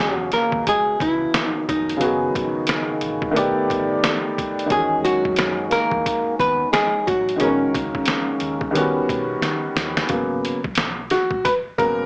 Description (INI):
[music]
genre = hip hop, jazz-hop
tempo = 89 BPM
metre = 4/4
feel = swing 62% on 16ths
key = G# minor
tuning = A4 = 440 Hz
[part]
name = archtop guitar, miked and amplified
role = melody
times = 0.0-9.7 s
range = C#4 to B4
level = -21 LUFS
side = equal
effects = slapback echo
[part]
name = breathy trombone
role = second line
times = 0.0-9.7 s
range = C#3 to B3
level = -26 LUFS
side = equal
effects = none
[part]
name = warm upright piano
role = accompaniment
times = 0.0-12.1 s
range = B2 to D5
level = -22 LUFS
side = equal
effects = none
[part]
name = woody fretless electric bass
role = bass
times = 0.0-12.0 s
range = E#1 to D#3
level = -34 LUFS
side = equal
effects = none
[part]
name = trip hop sampler-style drum kit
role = drums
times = 0.3-12.0 s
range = hi-hat, kick drum, snare drum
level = -24 LUFS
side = equal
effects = none
[sound]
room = moderate studio reverb, RT60 0.5 s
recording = small speaker sound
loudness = -18 LUFS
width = side -30 dB against mid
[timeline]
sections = 0.0-10.1 A section; 10.1-12.1 B section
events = drum fill 9.4-10.1; upright piano solo 10.1-12.1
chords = 0.0 C#m9; 2.0 F#madd9; 3.4 B7alt; 4.7 Emaj7; 7.4 F#69/A#; 8.7 D#7alt; 10.1 G#m11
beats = 0.66 1.33 | 2.01 2.68 3.35 4.03 | 4.70 5.38 6.05 6.72 | 7.40 8.07 8.75 9.42 | 10.10 10.77 11.44